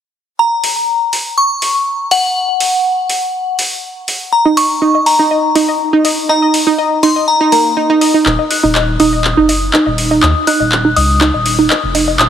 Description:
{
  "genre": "progressive house",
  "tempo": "122 BPM",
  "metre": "4/4",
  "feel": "straight",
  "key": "Eb minor",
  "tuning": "A4 = 439 Hz",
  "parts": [
    { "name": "glassy synth bell", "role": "melody", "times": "0.4-12.3 s", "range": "Gb5 to Gb6", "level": "-14 LUFS", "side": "left 1 dB", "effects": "chorus, phaser, low-pass filter, tape echo" },
    { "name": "deep house drum kit", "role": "drums", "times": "0.6-12.3 s", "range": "handclaps, hi-hat", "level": "-17 LUFS", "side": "equal", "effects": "overdrive" },
    { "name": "analog pluck", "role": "arpeggios", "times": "4.5-12.1 s", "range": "Bb3 to Eb5", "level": "-12 LUFS", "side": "right 2 dB", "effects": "chorus, tape echo" },
    { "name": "saturated sub bass", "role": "bass", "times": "8.3-12.3 s", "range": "Eb1 to Eb2", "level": "-17 LUFS", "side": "left 1 dB", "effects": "none" }
  ],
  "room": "moderate huge ambient reverb, RT60 6.4 s",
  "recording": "heavily compressed radio sound",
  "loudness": "-10 LUFS",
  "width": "side -9 dB against mid",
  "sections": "0.4-8.3 A section; 8.3-12.3 B section",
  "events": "build-up 8.3-12.3; drum fill 8.3-12.3; filter sweep on synth pluck 8.3-12.3; filter sweep on synth bell 8.3-12.3",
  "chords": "0.4 Eb5; 8.3 Ebm"
}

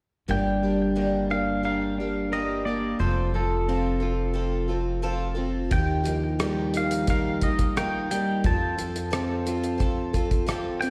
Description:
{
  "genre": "folk rock and heartland rock",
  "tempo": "88 BPM",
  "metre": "4/4",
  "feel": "straight",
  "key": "G minor",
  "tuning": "A4 = 440 Hz",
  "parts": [
    { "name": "pedal steel guitar", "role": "melody", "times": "0.3-10.9 s", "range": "A4 to A5", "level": "-33 LUFS", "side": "equal", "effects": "slapback echo, tape echo" },
    { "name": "picked twelve-string acoustic guitar", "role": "accompaniment", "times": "0.3-10.9 s", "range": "G2 to A4", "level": "-34 LUFS", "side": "equal", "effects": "none" },
    { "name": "electric guitar at the edge of break-up", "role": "riff", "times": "0.3-10.9 s", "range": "G2 to Bb4", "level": "-30 LUFS", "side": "equal", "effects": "none" },
    { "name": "upright bass", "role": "bass", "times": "0.3-10.9 s", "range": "F1 to F2", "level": "-33 LUFS", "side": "equal", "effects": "none" },
    { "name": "cloth-damped thuddy drum kit", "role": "drums", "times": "5.7-10.9 s", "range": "hi-hat, kick drum, rim click", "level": "-30 LUFS", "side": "equal", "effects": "none" }
  ],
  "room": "light reverb, studio reverb",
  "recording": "live gig heard through the venue's PA, recital hall reverb",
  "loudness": "-26 LUFS",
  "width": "mono",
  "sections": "0.3-10.9 A section",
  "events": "none",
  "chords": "0.3 Gm; 3.0 F; 5.7 Ebadd9; 8.4 F"
}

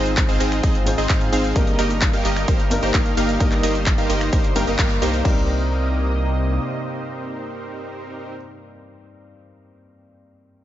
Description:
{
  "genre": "EDM, festival progressive house",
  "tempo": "130 BPM",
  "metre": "4/4",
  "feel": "straight",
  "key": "C minor",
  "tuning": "A4 = 440 Hz",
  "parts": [
    { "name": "dark grand piano", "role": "accompaniment", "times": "0.0-10.6 s", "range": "G2 to C5", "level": "-28 LUFS", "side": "left 2 dB", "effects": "sidechain pumping, dub echo" },
    { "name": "lush unison pad", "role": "sustained chords", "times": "0.0-8.3 s", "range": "C3 to Eb5", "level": "-29 LUFS", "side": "right 1 dB", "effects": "chorus, sidechain pumping" },
    { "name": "supersaw stab", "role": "riff", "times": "0.0-8.3 s", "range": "Bb3 to G5", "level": "-24 LUFS", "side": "right 1 dB", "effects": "sidechain pumping, dub echo" },
    { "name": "saturated sub bass", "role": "bass", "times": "0.0-6.6 s", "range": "G1 to Ab2", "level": "-24 LUFS", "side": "equal", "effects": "sidechain pumping" },
    { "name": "big-room dance drum kit", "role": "drums", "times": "0.1-5.3 s", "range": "crash cymbal, finger snaps, handclaps, hi-hat, ride cymbal, shaker", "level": "-27 LUFS", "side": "equal", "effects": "overdrive" },
    { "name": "electronic kick drum", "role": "drums", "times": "0.2-5.3 s", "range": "none", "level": "-20 LUFS", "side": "equal", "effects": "none" }
  ],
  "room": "light reverb",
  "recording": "nothing above 7.6 kHz",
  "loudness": "-17 LUFS",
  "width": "side -12 dB against mid",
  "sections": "0.0-5.2 A section; 5.2-8.9 B section",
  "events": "drop 0.0-5.2; band accent 4.8",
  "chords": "0.0 Ab; 1.6 Eb/G; 5.2 Cm7"
}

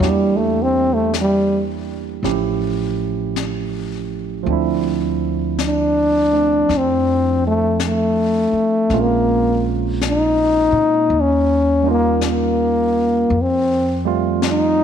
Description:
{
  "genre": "jazz ballad",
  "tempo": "54 BPM",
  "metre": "4/4",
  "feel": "swing 66% on 8ths",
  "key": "unclear",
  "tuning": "A4 = 442 Hz",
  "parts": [
    { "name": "warm trombone", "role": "melody", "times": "0.0-14.8 s", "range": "Gb3 to Eb4", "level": "-16 LUFS", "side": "left 2 dB", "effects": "none" },
    { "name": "barky tine electric piano", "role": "accompaniment", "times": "0.0-14.8 s", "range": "F3 to G4", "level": "-22 LUFS", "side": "right 12 dB", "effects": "medium stereo tremolo" },
    { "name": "upright bass", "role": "bass", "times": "0.0-14.8 s", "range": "A1 to Bb2", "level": "-24 LUFS", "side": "left 1 dB", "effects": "none" },
    { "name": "jazz brush drum kit", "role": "drums", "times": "0.0-14.8 s", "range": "brushed snare drum, hi-hat, snare drum", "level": "-28 LUFS", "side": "left 11 dB", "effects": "none" }
  ],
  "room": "light reverb",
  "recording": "1960s-style stereo with parts hard left and right",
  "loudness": "-15 LUFS",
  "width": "side -8 dB against mid",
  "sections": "0.0-14.8 A section",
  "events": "trombone solo 0.0-14.8",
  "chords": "0.0 Em7b5; 2.2 A7b13; 4.5 Dm9; 8.9 Bbm7; 11.1 Eb9; 13.3 Fadd9"
}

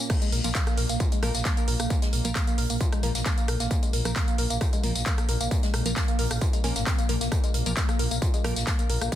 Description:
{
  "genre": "driving peak-time techno",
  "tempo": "133 BPM",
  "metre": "4/4",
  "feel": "straight",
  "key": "unclear",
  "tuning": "A4 = 440 Hz",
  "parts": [
    { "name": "woody wave-folded pluck", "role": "riff", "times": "0.0-9.2 s", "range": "Ab3 to Bb4", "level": "-32 LUFS", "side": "right 2 dB", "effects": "chorus, sidechain pumping, tape echo" },
    { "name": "deep dark ambient pad", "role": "drone", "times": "0.0-9.2 s", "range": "Bb2 to Bb3", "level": "-37 LUFS", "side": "left 1 dB", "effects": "chorus, built-in reverb, sidechain pumping" },
    { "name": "electronic kick drum", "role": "drums", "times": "0.1-9.2 s", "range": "none", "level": "-25 LUFS", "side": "equal", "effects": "distortion, overdrive" },
    { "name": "jazz brush drum kit", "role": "drums", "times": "0.1-9.2 s", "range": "hi-hat, snare drum", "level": "-41 LUFS", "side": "right 3 dB", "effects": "sidechain pumping on hats, high-pass filter on hats, soft clipping on snare, high-pass filter on snare, high-pass filter on room" },
    { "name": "techno drum kit", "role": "drums", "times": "0.1-9.2 s", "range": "crash cymbal, handclaps, hi-hat, rim click, tambourine", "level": "-30 LUFS", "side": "left 1 dB", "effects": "none" },
    { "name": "growling FM bass", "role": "bass", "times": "0.3-9.1 s", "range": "Ab1 to Bb1", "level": "-28 LUFS", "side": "equal", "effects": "sidechain pumping" },
    { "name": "wavetable chord stab", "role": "stabs", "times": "0.4-8.5 s", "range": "F3 to Bb4", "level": "-35 LUFS", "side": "equal", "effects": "cassette tape, sidechain pumping, ping-pong delay" }
  ],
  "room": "light reverb",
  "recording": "dense, heavily limited modern master",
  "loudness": "-23 LUFS",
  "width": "side -12 dB against mid",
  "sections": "0.1-9.2 A section",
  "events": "drop 0.1-9.2",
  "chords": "0.1 Bb5"
}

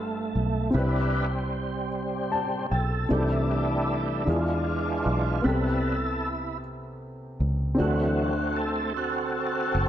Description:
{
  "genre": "gospel",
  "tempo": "51 BPM (dotted quarters)",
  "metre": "6/8",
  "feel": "straight",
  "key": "C major",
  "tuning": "A4 = 440 Hz",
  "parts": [
    { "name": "warm upright piano", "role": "accompaniment", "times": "0.0-9.9 s", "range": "G2 to A5", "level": "-29 LUFS", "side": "left 1 dB", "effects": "none" },
    { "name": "overdriven tonewheel organ", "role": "sustained chords", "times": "0.0-9.9 s", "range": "C3 to B4", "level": "-28 LUFS", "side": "right 1 dB", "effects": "slow rotary speaker, chorus vibrato" },
    { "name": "fingered electric bass", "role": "bass", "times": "0.0-9.9 s", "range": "F#1 to E2", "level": "-28 LUFS", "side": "equal", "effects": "none" }
  ],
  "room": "light reverb, small room ambience",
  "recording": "dark, warm production",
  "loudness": "-24 LUFS",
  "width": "side -11 dB against mid",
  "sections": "0.0-3.1 A section; 3.1-9.9 A section",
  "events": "tonewheel organ solo 0.0-3.1, 3.1-9.9; upright piano fill 1.9-3.1",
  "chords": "0.0 G9; 0.7 Cmaj7; 3.1 C69; 4.3 E7b9; 5.4 Am9/C; 7.8 D7"
}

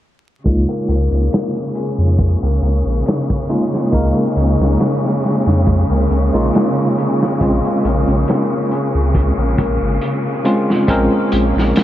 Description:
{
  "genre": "trip hop",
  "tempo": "69 BPM",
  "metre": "4/4",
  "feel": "swing 54% on 16ths",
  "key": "unclear",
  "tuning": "A4 = 440 Hz",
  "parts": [
    { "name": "bell-like tine electric piano", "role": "accompaniment", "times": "0.4-11.8 s", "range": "Ab3 to Bb4", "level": "-18 LUFS", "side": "equal", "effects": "harmonic tremolo, vintage 12-bit sampler grit, low-pass filter, tape echo" },
    { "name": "warm studio string section", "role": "sustained chords", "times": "0.4-11.8 s", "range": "Db3", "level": "-21 LUFS", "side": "equal", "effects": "none" },
    { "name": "warm sub bass", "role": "bass", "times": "0.5-11.7 s", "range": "Ab1 to F2", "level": "-16 LUFS", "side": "equal", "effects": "none" },
    { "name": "vintage drum kit", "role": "drums", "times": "0.5-11.8 s", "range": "hi-hat, kick drum, snare drum", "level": "-21 LUFS", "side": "equal", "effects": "low-pass filter on kick, low-pass filter on hats, low-pass filter on snare, low-pass filter on room" },
    { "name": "felt-muted upright piano", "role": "arpeggios", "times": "0.7-11.8 s", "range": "Ab3 to Bb3", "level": "-23 LUFS", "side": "left 3 dB", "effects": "low-pass filter, tape echo" }
  ],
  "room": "moderate huge ambient reverb, RT60 8.4 s",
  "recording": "dreamy mix soaked in reverb, vinyl crackle, low-pass filter",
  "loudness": "-14 LUFS",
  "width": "side -13 dB against mid",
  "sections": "0.5-11.8 A section",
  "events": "filter sweep on tine electric piano 0.5-11.8; filter sweep on felt piano 0.5-11.8; filter sweep 0.5-11.8",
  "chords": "0.5 Db69; 7.4 Bbm9"
}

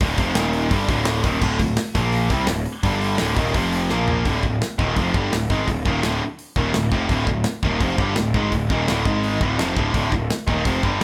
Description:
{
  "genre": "heavy metal",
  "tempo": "169 BPM",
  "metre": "4/4",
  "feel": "straight",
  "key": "D phrygian",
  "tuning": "A4 = 440 Hz",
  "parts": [
    { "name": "high-gain distorted guitar", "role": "riff", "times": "0.0-11.0 s", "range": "D2 to C4", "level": "-27 LUFS", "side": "equal", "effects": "distortion" },
    { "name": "tight distorted guitar", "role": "riff", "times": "0.0-11.0 s", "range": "D2 to C4", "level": "-28 LUFS", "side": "equal", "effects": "distortion" },
    { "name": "fuzz picked electric bass", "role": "bass", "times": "0.0-11.0 s", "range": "D1 to C2", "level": "-26 LUFS", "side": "equal", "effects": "overdrive" },
    { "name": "modern studio drum kit", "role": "drums", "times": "0.0-11.0 s", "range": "crash cymbal, hi-hat, kick drum, snare drum, toms", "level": "-27 LUFS", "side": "equal", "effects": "none" }
  ],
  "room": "light reverb",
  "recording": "band playing live in one room",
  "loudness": "-21 LUFS",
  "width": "mono",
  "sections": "0.0-4.3 A section; 4.3-11.0 B section",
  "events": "drum fill 3.9-4.3",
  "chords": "0.4 Eb5; 0.7 D5; 2.0 Bb5; 2.3 D5; 2.8 G5; 3.2 D5; 3.5 F5; 3.9 Bb5; 4.3 Dm; 9.1 G#5; 9.4 Dm"
}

